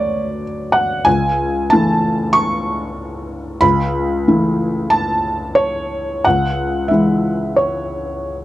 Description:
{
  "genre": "neoclassical minimalist piano",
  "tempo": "93 BPM",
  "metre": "4/4",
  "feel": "rubato",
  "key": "A major",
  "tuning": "A4 = 440 Hz",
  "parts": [
    { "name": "felt-muted upright piano", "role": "solo", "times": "0.0-8.4 s", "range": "C#2 to C#6", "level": "-15 LUFS", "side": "equal", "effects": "none" }
  ],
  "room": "light reverb",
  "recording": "dry, close 1970s-style studio recording",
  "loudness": "-15 LUFS",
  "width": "side -15 dB against mid",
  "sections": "0.0-8.4 A section",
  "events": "none",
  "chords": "0.0 D; 1.1 A/C#; 6.2 C#m",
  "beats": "0.42 | 1.06 1.71 2.35 2.99 | 3.63 4.27 4.92 5.56 | 6.25 6.90 7.56 8.25"
}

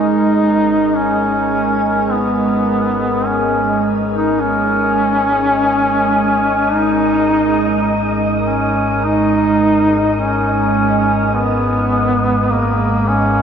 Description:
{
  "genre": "dark ambient drone",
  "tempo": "52 BPM",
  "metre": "4/4",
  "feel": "straight",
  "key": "G# minor",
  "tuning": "A4 = 441 Hz",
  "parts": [
    { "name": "warm duduk", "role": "melody", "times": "0.0-13.4 s", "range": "A#3 to D#4", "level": "-15 LUFS", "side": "equal", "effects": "shimmer reverb, tape echo" },
    { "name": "deep dark ambient pad", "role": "sustained chords", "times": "0.0-13.4 s", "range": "G#3 to D#5", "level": "-18 LUFS", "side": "right 2 dB", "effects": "chorus, built-in reverb, shimmer reverb" },
    { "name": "deep rumbling drone", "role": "drone", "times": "0.3-13.4 s", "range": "G#1 to G#2", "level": "-24 LUFS", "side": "equal", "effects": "built-in reverb, wide subtle chorus" },
    { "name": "wind-like tuned noise texture", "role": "texture", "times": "2.1-13.4 s", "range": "D#5", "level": "-26 LUFS", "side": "equal", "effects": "built-in reverb, shimmer reverb" }
  ],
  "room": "wet cathedral reverb, RT60 6.7 s",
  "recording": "dark, warm production",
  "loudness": "-13 LUFS",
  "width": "side -7 dB against mid",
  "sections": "0.0-13.4 A section",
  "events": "fade-in on synth drone 0.0-13.4",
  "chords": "0.0 G#5",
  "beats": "0.93 2.09 3.24 | 4.40 5.55 6.70 7.86 | 9.01 10.16 11.32 12.47"
}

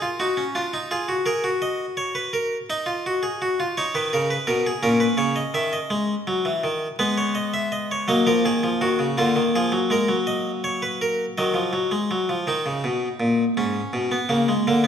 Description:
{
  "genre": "classical, baroque-style 3-part fugue for harpsichord",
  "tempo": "55 BPM (dotted quarters)",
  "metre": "6/8",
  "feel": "straight",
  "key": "G# minor",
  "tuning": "A4 = 440 Hz",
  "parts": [
    { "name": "harpsichord", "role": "solo", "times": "0.0-14.9 s", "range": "G#2 to E5", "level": "-20 LUFS", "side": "equal", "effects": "none" }
  ],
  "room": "wet recital hall reverb, RT60 1.5 s",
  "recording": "minimal, uncompressed stereo recording",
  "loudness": "-20 LUFS",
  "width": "side -8 dB against mid",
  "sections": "0.0-12.5 A section; 12.5-14.9 B section",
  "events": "none",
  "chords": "0.0 D#m; 0.6 A#7/D; 1.6 D#m/F#; 2.7 D#m; 3.8 G#m; 4.8 D#5/A#; 5.9 G#5; 7.0 G#m; 8.1 D#m; 9.2 A#7/D; 10.3 D#m/F#; 11.4 D#m; 12.5 B; 13.6 G#madd11",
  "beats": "0.55 | 1.62 2.69 | 3.77 4.84 | 5.92 7.00 | 8.09 9.18 | 10.27 11.36 | 12.46 13.56 | 14.66"
}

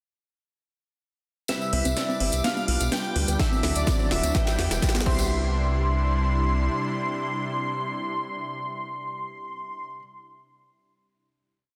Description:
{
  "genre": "progressive house",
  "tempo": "126 BPM",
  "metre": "4/4",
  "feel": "straight",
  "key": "C major",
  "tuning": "A4 = 440 Hz",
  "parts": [
    { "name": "soft supersaw", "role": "melody", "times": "1.5-9.9 s", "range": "D5 to C6", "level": "-34 LUFS", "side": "equal", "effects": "cassette tape, sidechain pumping, digital delay" },
    { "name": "soft synth bell", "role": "second line", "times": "1.5-10.0 s", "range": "D5 to C6", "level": "-41 LUFS", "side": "equal", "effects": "none" },
    { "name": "supersaw pad", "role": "sustained chords", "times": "1.5-9.9 s", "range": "C3 to A4", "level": "-36 LUFS", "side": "equal", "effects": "sidechain pumping, low-pass filter" },
    { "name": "unison pluck", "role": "arpeggios", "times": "1.5-5.5 s", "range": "B3 to C4", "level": "-36 LUFS", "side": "equal", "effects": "cassette tape, sidechain pumping, digital delay" },
    { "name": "warm concert grand piano", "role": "stabs", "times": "1.5-10.0 s", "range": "F#3 to G5", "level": "-36 LUFS", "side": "equal", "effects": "sidechain pumping, digital delay" },
    { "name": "house drum kit", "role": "drums", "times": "1.5-5.2 s", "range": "crash cymbal, hi-hat, snare drum", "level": "-32 LUFS", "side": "equal", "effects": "sidechain pumping on hats, sidechain pumping on cymbals" },
    { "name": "tambourine", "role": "percussion", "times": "1.5-5.3 s", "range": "none", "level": "-38 LUFS", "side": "equal", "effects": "none" },
    { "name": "riser", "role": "sound effects", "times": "3.9-5.3 s", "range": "none", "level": "-45 LUFS", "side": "equal", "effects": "none" },
    { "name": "drifting glass-harmonics texture", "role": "texture", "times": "1.8-5.3 s", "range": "D6", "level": "-45 LUFS", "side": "equal", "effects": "chorus, built-in reverb, sidechain pumping" },
    { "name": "round analog bass", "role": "bass", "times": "1.7-6.7 s", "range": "D1 to E2", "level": "-28 LUFS", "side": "equal", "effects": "sidechain pumping" },
    { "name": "electronic kick drum", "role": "drums", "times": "3.4-5.2 s", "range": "none", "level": "-28 LUFS", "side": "equal", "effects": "none" }
  ],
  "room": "moderate scoring stage reverb, RT60 1.9 s",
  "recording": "dense, heavily limited modern master",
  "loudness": "-25 LUFS",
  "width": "mono",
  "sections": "1.5-5.3 build; 5.3-9.1 final hit",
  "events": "build-up 1.5-5.3; drum fill 1.5-5.3; filter sweep on synth pluck 1.5-5.3",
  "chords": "1.5 Cmaj7; 2.4 G7/B; 3.4 Dadd9; 4.3 Em7; 5.1 Cmaj7",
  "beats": "| 1.49 1.97 2.44 2.92 | 3.40 3.87 4.35 4.82 | 5.30 5.78 6.25 6.73 | 7.21 7.68 8.16 8.63"
}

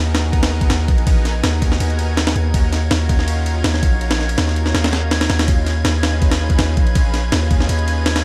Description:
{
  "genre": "drum and bass, jungle",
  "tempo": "163 BPM",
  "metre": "4/4",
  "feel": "straight",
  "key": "Eb minor",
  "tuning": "A4 = 440 Hz",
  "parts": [
    { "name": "lush unison pad", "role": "sustained chords", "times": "0.0-8.2 s", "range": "Cb4 to Cb5", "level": "-29 LUFS", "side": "equal", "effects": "chorus, vintage 12-bit sampler grit" },
    { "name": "long sustained 808-style bass", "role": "bass", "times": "0.0-8.2 s", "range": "Bb1 to Eb2", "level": "-20 LUFS", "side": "equal", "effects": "none" },
    { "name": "wind-like tuned noise texture", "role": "texture", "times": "0.9-8.2 s", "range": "Ab6", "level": "-33 LUFS", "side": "equal", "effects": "built-in reverb" },
    { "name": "breakbeat sampler-style drum kit", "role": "drums", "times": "0.1-8.2 s", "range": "kick drum, ride cymbal, snare drum", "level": "-20 LUFS", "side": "equal", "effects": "studio reverb" }
  ],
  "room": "digital ambience",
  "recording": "none",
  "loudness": "-17 LUFS",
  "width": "mono",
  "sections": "0.0-8.2 A section",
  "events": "none",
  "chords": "0.0 Abm7; 2.5 Ebm9; 5.5 Db7",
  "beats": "0.33 0.70 | 1.07 1.44 1.80 2.17 | 2.54 2.91 3.28 3.64 | 4.01 4.38 4.75 5.12 | 5.49 5.85 6.22 6.59 | 6.96 7.33 7.69 8.06"
}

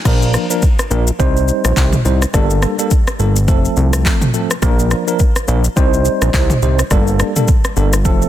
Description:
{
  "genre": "afrobeats",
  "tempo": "105 BPM",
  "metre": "4/4",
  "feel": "swing 58% on 16ths",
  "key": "Bb major",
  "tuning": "A4 = 444 Hz",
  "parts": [
    { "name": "bell-like tine electric piano", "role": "accompaniment", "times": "0.1-8.3 s", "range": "F3 to C5", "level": "-18 LUFS", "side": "right 1 dB", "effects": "fast stereo tremolo" },
    { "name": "fat analog bass", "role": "bass", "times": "0.1-8.3 s", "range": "F1 to C2", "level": "-15 LUFS", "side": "equal", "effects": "none" },
    { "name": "deep house drum kit", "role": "drums", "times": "0.1-8.3 s", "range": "crash cymbal, handclaps, kick drum, rim click, shaker, toms", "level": "-15 LUFS", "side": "equal", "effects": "none" }
  ],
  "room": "little or no reverb",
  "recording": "dense, heavily limited modern master",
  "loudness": "-12 LUFS",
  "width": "side -12 dB against mid",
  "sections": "0.1-8.3 A section",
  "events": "none",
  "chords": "0.1 Bb; 1.2 Cm; 2.3 Gmadd9; 3.5 F; 4.6 Bb; 5.8 Cm; 6.9 Gmadd9",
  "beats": "| 0.05 0.62 1.20 1.77 | 2.34 2.91 3.48 4.05 | 4.62 5.20 5.77 6.34 | 6.91 7.48 8.05"
}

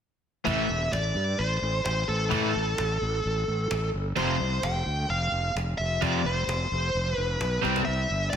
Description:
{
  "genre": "hard rock",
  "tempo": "130 BPM",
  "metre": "4/4",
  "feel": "straight",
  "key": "A minor",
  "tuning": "A4 = 435 Hz",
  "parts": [
    { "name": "overdriven semi-hollow guitar", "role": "riff", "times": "0.4-7.8 s", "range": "F2 to C4", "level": "-32 LUFS", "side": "left 9 dB", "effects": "slapback echo" },
    { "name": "bluesy overdriven lead guitar", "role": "melody", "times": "0.5-8.4 s", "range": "A4 to G5", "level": "-28 LUFS", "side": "equal", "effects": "distortion, slapback echo" },
    { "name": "crunchy overdriven guitar", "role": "riff", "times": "0.5-7.8 s", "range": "F2 to C4", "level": "-31 LUFS", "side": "right 10 dB", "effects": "slapback echo" },
    { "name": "fuzz fingered electric bass", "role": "bass", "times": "0.5-8.4 s", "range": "E1 to A2", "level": "-29 LUFS", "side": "equal", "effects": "overdrive" },
    { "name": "cajon", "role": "drums", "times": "0.5-8.4 s", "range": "none", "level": "-37 LUFS", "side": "equal", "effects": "slapback echo" }
  ],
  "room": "moderate recital hall reverb, RT60 1.4 s, digital ambience",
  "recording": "big arena sound",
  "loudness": "-24 LUFS",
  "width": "side -8 dB against mid",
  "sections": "0.5-8.4 A section",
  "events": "drum fill 7.6",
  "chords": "0.5 A5; 4.2 F5; 7.6 C",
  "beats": "| 0.47 0.93 1.40 1.86 | 2.32 2.78 3.24 3.71 | 4.17 4.63 5.09 5.55 | 6.02 6.48 6.94 7.40 | 7.86 8.32"
}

